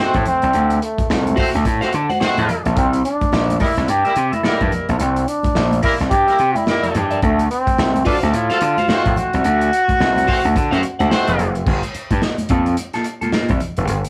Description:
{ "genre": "funk", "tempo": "108 BPM", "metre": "4/4", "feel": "swing 60% on 16ths", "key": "G dorian", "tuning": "A4 = 440 Hz", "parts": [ { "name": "bright trombone", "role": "melody", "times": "0.0-11.1 s", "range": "A3 to G4", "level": "-21 LUFS", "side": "equal", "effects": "none" }, { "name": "clear horn section", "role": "second line", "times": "0.0-11.5 s", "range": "F#3 to C5", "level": "-24 LUFS", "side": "equal", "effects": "none" }, { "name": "electric guitar at the edge of break-up", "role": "accompaniment", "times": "0.0-13.5 s", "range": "Bb3 to G5", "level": "-26 LUFS", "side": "equal", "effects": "phaser" }, { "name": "gritty slap bass", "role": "bass", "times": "0.1-14.0 s", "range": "E#1 to D3", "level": "-21 LUFS", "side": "equal", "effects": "overdrive" }, { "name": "warm soul drum kit", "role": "drums", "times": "0.1-14.1 s", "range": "crash cymbal, hi-hat, kick drum, snare drum", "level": "-24 LUFS", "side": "equal", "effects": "none" }, { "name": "congas", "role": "percussion", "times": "0.1-14.1 s", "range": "none", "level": "-30 LUFS", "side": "equal", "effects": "none" } ], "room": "moderate small room reverb, RT60 0.5 s", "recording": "rough rehearsal-room recording", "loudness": "-17 LUFS", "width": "mono", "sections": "0.0-11.7 A section; 11.7-14.1 B section", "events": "none", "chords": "0.0 D7; 2.8 C9; 7.2 D7#9; 11.7 Gm9" }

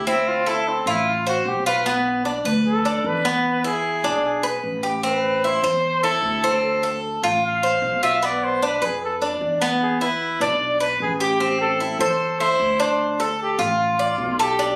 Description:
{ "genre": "latin, Cuban son and guajira", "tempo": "151 BPM", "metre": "4/4", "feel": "straight", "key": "A minor", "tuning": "A4 = 440 Hz", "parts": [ { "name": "breathy trumpet", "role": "melody", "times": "0.0-14.8 s", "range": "C4 to F5", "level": "-25 LUFS", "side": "equal", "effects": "none" }, { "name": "Cuban tres", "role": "arpeggios", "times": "0.0-14.8 s", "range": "B3 to D5", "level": "-24 LUFS", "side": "equal", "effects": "none" }, { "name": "upright bass", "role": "bass", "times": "0.0-14.8 s", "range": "A1 to F2", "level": "-32 LUFS", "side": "equal", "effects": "none" } ], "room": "little or no reverb", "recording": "recorded on a phone in the room, club reverb", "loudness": "-21 LUFS", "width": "mono", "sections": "0.0-11.4 A section; 11.4-14.8 B section", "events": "trumpet solo 0.0-11.4", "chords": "0.3 Dm7; 1.8 Bmadd11; 3.4 E7; 5.0 Am; 6.6 Dm7; 8.2 Bdim; 9.8 E5; 11.4 Am; 13.0 Dm" }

